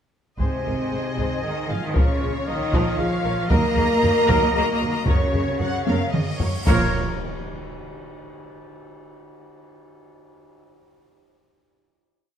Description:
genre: cinematic, epic orchestral film score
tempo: 115 BPM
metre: 3/4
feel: straight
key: Bb minor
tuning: A4 = 440 Hz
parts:
  - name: warm symphonic violin section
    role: melody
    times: 0.4-7.0 s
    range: Db5 to Gb5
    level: -31 LUFS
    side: left 1 dB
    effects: none
  - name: rich symphonic violin section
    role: second line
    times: 0.4-7.0 s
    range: Bb4 to Bb5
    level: -32 LUFS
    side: left 3 dB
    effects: none
  - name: warm symphonic viola section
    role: accompaniment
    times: 0.4-7.0 s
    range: F3 to C5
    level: -30 LUFS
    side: equal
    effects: none
  - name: mellow French horn section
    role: sustained chords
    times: 0.4-6.9 s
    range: C4 to Bb4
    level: -27 LUFS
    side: left 3 dB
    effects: none
  - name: warm woodwind section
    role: sustained chords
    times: 0.4-6.9 s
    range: Bb3 to Ab5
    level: -34 LUFS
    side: left 1 dB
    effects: none
  - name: dark trumpet section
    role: stabs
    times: 0.4-6.9 s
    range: Bb4 to Bb5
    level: -29 LUFS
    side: right 4 dB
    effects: none
  - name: clear symphonic double bass section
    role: bass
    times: 0.4-7.0 s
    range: Ab1 to Gb2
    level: -28 LUFS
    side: right 2 dB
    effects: none
  - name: rich symphonic cello section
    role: bass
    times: 0.4-7.0 s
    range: C3 to Bb3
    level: -28 LUFS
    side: equal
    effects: none
  - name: taiko ensemble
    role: drums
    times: 0.4-7.7 s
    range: none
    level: -23 LUFS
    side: equal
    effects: none
  - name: cymbal swell and impact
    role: sound effects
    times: 6.2-8.3 s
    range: none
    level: -35 LUFS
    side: equal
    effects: none
room: wet scoring stage reverb, RT60 1.9 s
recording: dark, warm production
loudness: -19 LUFS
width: side -8 dB against mid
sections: 0.4-6.7 theme; 6.7-8.3 final chord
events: drum fill 5.9-6.7; cymbal swell 6.2-6.7; impact 6.7-8.3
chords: 0.4 Ab; 1.9 Bbm; 3.5 Ebm; 5.1 Gb; 6.7 Bbm

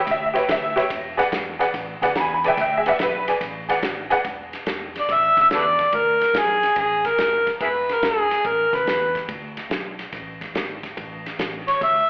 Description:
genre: electric blues shuffle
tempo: 143 BPM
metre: 4/4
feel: swing 67% on 8ths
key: E mixolydian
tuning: A4 = 439 Hz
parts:
  - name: honky-tonk upright piano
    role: accompaniment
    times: 0.0-4.2 s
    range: G4 to B5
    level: -20 LUFS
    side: equal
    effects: plate reverb, slapback echo
  - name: vintage muted fingered electric bass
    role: bass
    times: 0.1-12.0 s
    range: E1 to E2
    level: -38 LUFS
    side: equal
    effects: none
  - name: warm soul drum kit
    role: drums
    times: 0.1-11.9 s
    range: kick drum, ride cymbal, snare drum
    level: -28 LUFS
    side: equal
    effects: slapback echo
  - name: overdriven harmonica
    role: melody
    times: 5.0-9.2, 11.7-12.1 s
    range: E4 to E5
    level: -17 LUFS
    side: equal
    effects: plate reverb
room: moderate club ambience, RT60 0.5 s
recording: live gig heard through the venue's PA, club reverb, telephone sound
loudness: -18 LUFS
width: side -29 dB against mid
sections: 0.0-4.2 A section; 4.2-12.1 B section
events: none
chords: 0.0 A9 (rootless); 0.9 E7; 11.0 A5

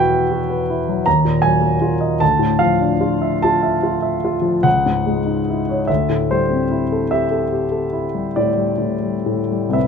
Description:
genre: classical, impressionist solo piano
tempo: 40-52 BPM (dotted quarters)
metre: 9/8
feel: rubato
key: unclear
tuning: A4 = 440 Hz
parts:
  - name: warm concert grand piano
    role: solo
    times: 0.0-9.9 s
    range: C2 to Bb5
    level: -16 LUFS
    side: equal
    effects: none
room: moderate large studio reverb, RT60 0.9 s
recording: none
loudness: -16 LUFS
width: side -6 dB against mid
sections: 0.0-9.9 A section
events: none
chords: 0.0 Emadd9; 1.1 Ebmadd9; 2.2 Dmadd9; 4.7 C#madd9; 5.9 D9sus4

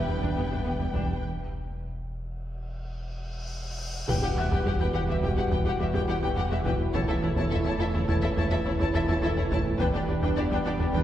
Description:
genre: cinematic, hybrid orchestral and electronic film score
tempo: 105 BPM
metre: 5/4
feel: straight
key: E dorian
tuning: A4 = 441 Hz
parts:
  - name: warm symphonic violin section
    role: melody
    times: 0.0-11.0 s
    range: B4 to A5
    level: -35 LUFS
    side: left 4 dB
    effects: none
  - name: dark symphonic violin section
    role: second line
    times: 0.0-11.0 s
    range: D4 to C#5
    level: -36 LUFS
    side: left 2 dB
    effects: none
  - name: hollow soft pad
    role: sustained chords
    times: 0.0-11.0 s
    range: G3 to D5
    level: -35 LUFS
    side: right 1 dB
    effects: chorus
  - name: mellow French horn section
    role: sustained chords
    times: 0.0-11.0 s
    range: G3 to F#4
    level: -36 LUFS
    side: equal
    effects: none
  - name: resonant blip pluck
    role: arpeggios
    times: 0.0-11.0 s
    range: E3 to A4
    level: -39 LUFS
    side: right 1 dB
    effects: none
  - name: rubbery square bass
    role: riff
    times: 0.0-11.0 s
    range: E2 to E3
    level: -33 LUFS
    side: right 1 dB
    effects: none
  - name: pure sine sub bass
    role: bass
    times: 0.0-11.0 s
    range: E1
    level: -37 LUFS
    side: equal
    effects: none
  - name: felt-muted upright piano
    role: texture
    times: 0.0-11.0 s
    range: E4 to A6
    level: -41 LUFS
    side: equal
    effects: tape echo
  - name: rich symphonic viola section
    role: accompaniment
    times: 0.1-11.0 s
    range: G3 to G4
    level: -34 LUFS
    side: right 1 dB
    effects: none
  - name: rich symphonic cello section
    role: bass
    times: 0.1-11.0 s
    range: E2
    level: -35 LUFS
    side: right 2 dB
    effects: none
  - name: rich symphonic double bass section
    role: bass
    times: 0.1-11.0 s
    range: E1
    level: -35 LUFS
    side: right 1 dB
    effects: none
  - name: taiko ensemble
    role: drums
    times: 0.2-11.0 s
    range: none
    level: -33 LUFS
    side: equal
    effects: none
  - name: cymbal swell and sub drop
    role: sound effects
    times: 3.1-6.9 s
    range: none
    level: -36 LUFS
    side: equal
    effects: none
  - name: warm trombone section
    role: sustained chords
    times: 4.1-11.0 s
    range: B2 to G3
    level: -38 LUFS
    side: equal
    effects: none
room: wet concert hall reverb, RT60 2.2 s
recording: heard from further back in the room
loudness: -24 LUFS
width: side -11 dB against mid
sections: 0.0-4.1 A section; 4.1-11.0 A section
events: break 1.2-4.1; cymbal swell 3.1-4.1; impact 4.1-6.9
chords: 0.0 G/E; 1.2 N.C.; 4.1 Emadd9; 6.9 A/E; 9.8 G/E

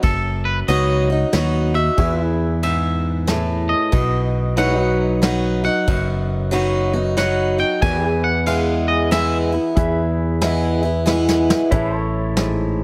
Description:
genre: honky-tonk and classic country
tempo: 92 BPM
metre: 3/4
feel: swing 64% on 8ths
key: E major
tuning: A4 = 440 Hz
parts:
  - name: twangy electric guitar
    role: second line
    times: 0.0-9.4 s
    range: A4 to G#5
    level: -26 LUFS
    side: equal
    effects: spring reverb, tape echo
  - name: picked swing-style acoustic guitar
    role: accompaniment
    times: 0.0-12.8 s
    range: E2 to F#4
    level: -24 LUFS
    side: equal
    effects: none
  - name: pedal steel guitar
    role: sustained chords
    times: 0.0-12.8 s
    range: E3 to F#5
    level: -29 LUFS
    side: equal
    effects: none
  - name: fingered electric bass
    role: bass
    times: 0.0-12.8 s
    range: F#1 to E2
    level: -24 LUFS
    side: equal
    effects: none
  - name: soft brush drum kit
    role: drums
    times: 0.0-12.6 s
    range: hi-hat, kick drum, ride cymbal, snare drum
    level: -25 LUFS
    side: equal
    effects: none
  - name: clear concert grand piano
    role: accompaniment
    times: 2.0-12.8 s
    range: F#3 to G#5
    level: -33 LUFS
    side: equal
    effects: none
room: little or no reverb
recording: none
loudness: -19 LUFS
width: mono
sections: 0.0-9.8 A section; 9.8-11.7 B section; 11.7-12.8 C section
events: clean electric guitar solo 0.0-9.8; drum fill 11.1-11.7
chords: 0.0 B; 2.0 E; 3.9 B; 7.8 E; 11.7 A

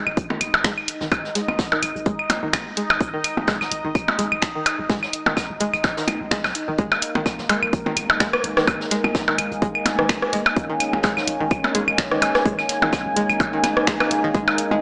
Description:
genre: minimal techno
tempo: 127 BPM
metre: 4/4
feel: swing 55% on 16ths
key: unclear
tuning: A4 = 439 Hz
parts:
  - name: punchy sub bass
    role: bass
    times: 0.0-14.8 s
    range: F#1 to B1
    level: -39 LUFS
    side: equal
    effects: sidechain pumping
  - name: bubbling stepped-filter texture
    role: texture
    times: 0.0-14.8 s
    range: A#3 to D#5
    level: -33 LUFS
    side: equal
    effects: chorus, built-in reverb, sidechain pumping
  - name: electronic claves, percussion blips and rim click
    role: percussion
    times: 0.1-14.8 s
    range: none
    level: -24 LUFS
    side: equal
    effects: analog delay
  - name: electronic kick drum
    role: drums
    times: 0.2-14.4 s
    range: none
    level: -26 LUFS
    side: equal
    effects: none
  - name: jazz brush drum kit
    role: drums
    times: 0.2-14.7 s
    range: hi-hat, snare drum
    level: -37 LUFS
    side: equal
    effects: sidechain pumping on hats, high-pass filter on hats, high-pass filter on snare, high-pass filter on room
  - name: string-like resonator pluck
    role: riff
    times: 0.3-14.8 s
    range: D#3 to G#3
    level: -31 LUFS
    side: equal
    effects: chorus, sidechain pumping, analog delay
  - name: house drum kit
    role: drums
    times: 0.4-14.7 s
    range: finger snaps, hi-hat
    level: -27 LUFS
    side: equal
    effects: none
  - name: deep dark ambient pad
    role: texture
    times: 7.7-14.8 s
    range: G#3 to G#5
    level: -28 LUFS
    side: equal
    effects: chorus, built-in reverb, sidechain pumping
room: moderate lush hall reverb, RT60 1.9 s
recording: small speaker sound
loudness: -21 LUFS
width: mono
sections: 0.0-6.8 A section; 6.8-14.8 B section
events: filter sweep on synth pluck 0.0-6.8; drop 6.8-14.8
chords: 0.0 G#5

